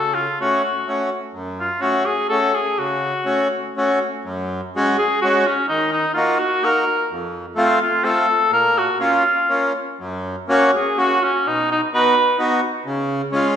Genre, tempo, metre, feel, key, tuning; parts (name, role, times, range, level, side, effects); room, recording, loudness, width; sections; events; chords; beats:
alpine folk; 126 BPM; 3/4; rubato; F# harmonic minor, F# major from 4.2 s; A4 = 440 Hz
warm cor anglais; melody; 0.0-12.4 s; C#4 to B4; -18 LUFS; equal
accordion; accompaniment; 0.0-13.6 s; F2 to F#4; -20 LUFS; equal
wet recital hall reverb, RT60 1.5 s; recorded in a church or concert hall; -16 LUFS; side -9 dB against mid
0.0-4.2 A section; 4.2-13.6 B section
0.0 F#m; 4.2 F#sus2; 5.7 D#m; 7.1 F; 8.5 A#m; 10.0 F#; 11.4 B; 12.9 C#
0.39 0.87 | 1.34 1.81 2.29 | 2.77 3.25 3.74 | 4.24 4.73 5.21 | 5.69 6.16 6.63 | 7.11 7.58 8.05 | 8.53 9.02 9.50 | 9.99 10.48 10.97 | 11.45 11.92 12.39 | 12.86 13.34